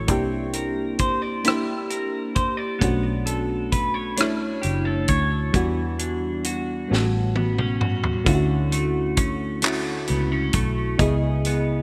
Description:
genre	slow six-eight R&B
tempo	44 BPM (dotted quarters)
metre	6/8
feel	straight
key	D major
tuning	A4 = 437 Hz
part	clean electric guitar	second line	0.0-11.8 s	A2 to D5	-30 LUFS	equal	lush chorus, delay
part	mellow FM electric piano	accompaniment	0.0-11.8 s	G3 to Eb5	-28 LUFS	equal	chorus
part	vintage muted fingered electric bass	bass	0.0-11.8 s	F#1 to E2	-28 LUFS	equal	none
part	warm soul drum kit	drums	0.1-11.7 s	handclaps, hi-hat, kick drum, rim click, snare drum, toms	-27 LUFS	equal	none
room	moderate lush hall reverb, RT60 2.8 s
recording	bright 1980s-style digital production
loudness	-23 LUFS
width	mono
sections	0.0-8.3 A section; 8.3-11.8 B section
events	drum fill 6.9-8.3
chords	0.1 C9; 2.8 Bm9; 5.5 Em9; 6.9 A13; 8.3 Dmaj7; 11.0 C#m7

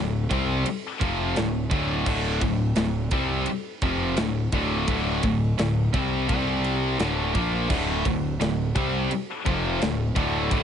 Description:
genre	heavy metal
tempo	85 BPM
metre	4/4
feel	straight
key	D minor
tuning	A4 = 440 Hz
part	scooped high-gain guitar	riff	0.0-10.6 s	D2 to C4	-28 LUFS	right 9 dB	distortion
part	tight distorted guitar	riff	0.0-10.6 s	D2 to C4	-27 LUFS	left 8 dB	distortion
part	fuzz picked electric bass	bass	0.0-10.6 s	D1 to C2	-28 LUFS	equal	overdrive
part	tight metal drum kit	drums	0.3-10.6 s	crash cymbal, kick drum, ride cymbal, snare drum	-29 LUFS	equal	none
part	tight distorted guitar	riff	7.7-10.6 s	D2 to C4	-32 LUFS	right 2 dB	distortion
room	small room ambience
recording	nothing above 10.4 kHz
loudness	-22 LUFS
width	side -8 dB against mid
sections	0.0-10.6 A section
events	none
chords	0.0 Dm; 6.3 C5; 7.0 Dm

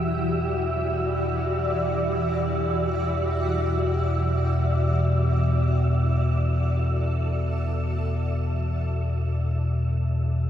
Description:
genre	dark ambient drone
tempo	free time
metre	none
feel	none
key	E minor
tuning	A4 = 442 Hz
part	granular cloud pad	sustained chords	0.0-10.5 s	E3 to D5	-28 LUFS	equal	built-in reverb, analog chorus, shimmer reverb
part	deep rumbling drone	drone	0.0-10.5 s	E2 to B2	-23 LUFS	equal	built-in reverb, phaser
part	wind-like tuned noise texture	texture	0.0-10.5 s	E5	-33 LUFS	right 3 dB	built-in reverb, shimmer reverb
room	wet huge ambient reverb, RT60 7.6 s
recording	dreamy mix soaked in reverb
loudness	-22 LUFS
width	side -10 dB against mid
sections	0.0-10.5 A section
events	fade-in on synth drone 0.0-10.5; fade-out on ambient pad 0.0-10.5; fade-out on synth texture 0.0-10.5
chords	0.0 Em7

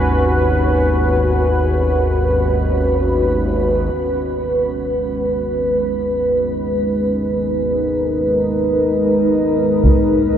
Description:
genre	dark ambient drone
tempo	free time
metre	none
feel	none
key	G# minor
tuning	A4 = 440 Hz
part	deep dark ambient pad	sustained chords	0.0-10.4 s	G#3 to B4	-16 LUFS	equal	chorus, built-in reverb, shimmer reverb
part	analog drone	drone	0.0-10.4 s	G#1 to D#2	-20 LUFS	equal	chorus
part	bubbling stepped-filter texture	texture	0.0-4.0 s	C#5	-45 LUFS	right 2 dB	none
part	taiko ensemble	percussion	9.8-10.0 s	none	-15 LUFS	equal	low-pass filter on perc
room	wet cathedral reverb, RT60 6.9 s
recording	dark, warm production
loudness	-15 LUFS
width	side -9 dB against mid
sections	0.0-3.9 A section; 3.9-10.4 B section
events	none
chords	0.0 Bsus2; 3.9 G#m

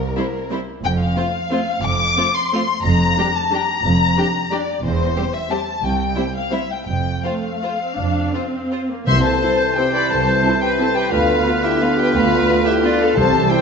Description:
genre	classical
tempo	154-194 BPM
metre	3/4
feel	rubato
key	F major, C major from 9.1 s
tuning	A4 = 440 Hz
part	warm studio violin section	melody	0.0-13.6 s	Bb4 to D6	-21 LUFS	left 5 dB	none
part	warm studio cello section	bass	0.0-13.4 s	C2 to F2	-24 LUFS	right 3 dB	none
part	warm studio double bass section	bass	0.0-13.4 s	E1 to D2	-25 LUFS	right 4 dB	none
part	warm studio violin section	second line	0.2-13.6 s	E4 to E5	-24 LUFS	left 2 dB	none
part	warm studio viola section	accompaniment	0.2-13.6 s	G3 to F4	-26 LUFS	right 2 dB	none
part	clear oboe	second line	9.1-13.6 s	B4 to C5	-25 LUFS	right 1 dB	none
part	mellow clarinet	second line	9.1-13.6 s	D4 to C5	-25 LUFS	left 2 dB	none
part	silver concert flute	second line	9.1-13.6 s	E6 to G6	-25 LUFS	left 2 dB	none
part	mellow bassoon	accompaniment	9.1-13.6 s	D3 to G3	-24 LUFS	equal	none
part	dark French horn section	sustained chords	9.1-13.6 s	B3 to F4	-26 LUFS	left 3 dB	none
part	dark trombone section	sustained chords	9.1-13.6 s	C3 to B3	-26 LUFS	right 5 dB	none
part	timpani	percussion	9.1-9.6, 13.2-13.6 s	C3	-22 LUFS	left 1 dB	none
room	wet recital hall reverb, RT60 1.3 s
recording	nothing above 7.6 kHz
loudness	-16 LUFS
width	side -6 dB against mid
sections	0.0-9.1 A section; 9.1-13.6 B section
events	none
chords	0.0 C5; 0.8 F; 2.8 Gm7/F; 4.8 C/E; 5.8 C; 6.9 F; 9.1 C; 11.1 Bdim/D

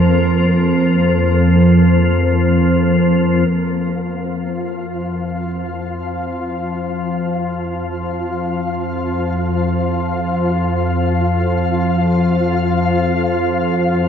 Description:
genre	dark ambient drone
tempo	free time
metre	none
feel	none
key	unclear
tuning	A4 = 440 Hz
part	organ-like drone	drone	0.0-14.1 s	F2 to F3	-15 LUFS	equal	ensemble chorus, built-in reverb
part	flickering grainy texture	texture	0.0-14.1 s	Bb3 to F5	-23 LUFS	equal	built-in reverb, shimmer reverb
room	wet huge ambient reverb, RT60 8.5 s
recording	none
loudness	-15 LUFS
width	side -8 dB against mid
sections	0.0-3.5 A section; 3.5-14.1 B section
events	fade-out on synth texture 0.0-3.5; fade-in on synth drone 3.5-14.1; fade-in on synth texture 3.5-14.1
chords	0.0 Fsus4; 3.5 N.C.

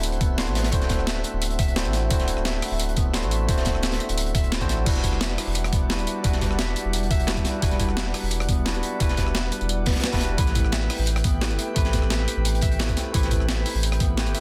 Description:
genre	liquid drum and bass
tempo	174 BPM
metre	4/4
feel	straight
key	E minor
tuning	A4 = 440 Hz
part	barky tine electric piano	accompaniment	0.0-14.4 s	G3 to C6	-33 LUFS	equal	digital delay
part	glassy FM pad	sustained chords	0.0-14.4 s	G3 to G5	-38 LUFS	equal	ensemble chorus, built-in reverb
part	concert harp	arpeggios	0.0-14.4 s	B3 to E5	-36 LUFS	equal	dub echo
part	sub bass with octave	bass	0.0-14.3 s	D1 to A1	-28 LUFS	equal	none
part	breakbeat sampler-style drum kit	drums	0.0-14.4 s	crash cymbal, hi-hat, rim click, snare drum	-31 LUFS	equal	none
part	crunchy breakbeat drum kit	drums	0.0-14.4 s	hi-hat, snare drum	-35 LUFS	equal	high-pass filter on hats, high-pass filter on snare, high-pass filter on room
part	electronic kick drum	drums	0.2-14.1 s	none	-26 LUFS	equal	none
room	light reverb, small room ambience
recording	dense, heavily limited modern master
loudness	-23 LUFS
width	mono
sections	0.0-4.9 A section; 4.9-14.4 A section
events	drop 0.0-4.9, 4.9-14.4; band accent 4.5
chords	0.0 D7; 4.9 Em9; 10.4 Am9

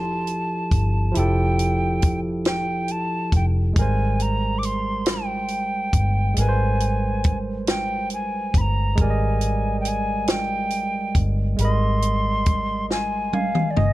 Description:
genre	slow six-eight R&B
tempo	46 BPM (dotted quarters)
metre	6/8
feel	straight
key	unclear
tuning	A4 = 440 Hz
part	mellow hollow alto recorder	melody	0.0-13.9 s	D5 to D6	-26 LUFS	equal	slapback echo
part	barky tine electric piano	accompaniment	0.0-13.9 s	F3 to Ab5	-26 LUFS	right 2 dB	none
part	vintage muted fingered electric bass	bass	0.0-13.9 s	F1 to Ab1	-22 LUFS	equal	none
part	compact cocktail drum kit	drums	0.3-13.9 s	hi-hat, kick drum, snare drum, toms	-23 LUFS	equal	none
room	small room ambience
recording	dark, warm production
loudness	-20 LUFS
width	side -16 dB against mid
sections	0.0-13.9 A section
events	drum fill 12.9-13.9; tine electric piano fill 12.9-13.9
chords	0.0 Fmaj9; 3.8 Abmaj9

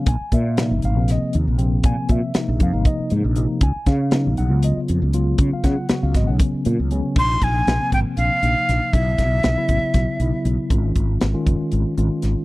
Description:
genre	electric jazz fusion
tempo	237 BPM (eighths)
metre	7/8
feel	straight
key	Bb minor from 7.2 s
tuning	A4 = 440 Hz
part	mellow tine electric piano	accompaniment	0.0-12.4 s	C3 to Ab5	-23 LUFS	left 1 dB	fast stereo tremolo
part	mellow fretless electric bass	bass	0.1-12.3 s	Gb1 to Db3	-20 LUFS	equal	ensemble chorus
part	tight funk drum kit	drums	0.1-12.3 s	crash cymbal, hi-hat, kick drum, snare drum	-20 LUFS	equal	none
part	breathy bright jazz flute	melody	7.2-10.5 s	E5 to C6	-21 LUFS	equal	none
room	small room ambience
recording	none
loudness	-17 LUFS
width	side -20 dB against mid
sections	0.0-7.2 A section; 7.2-12.4 B section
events	none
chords	0.1 Bb9sus4; 3.6 Db9sus4; 7.2 Bb9sus4; 8.9 Bsus4; 10.7 Absus4

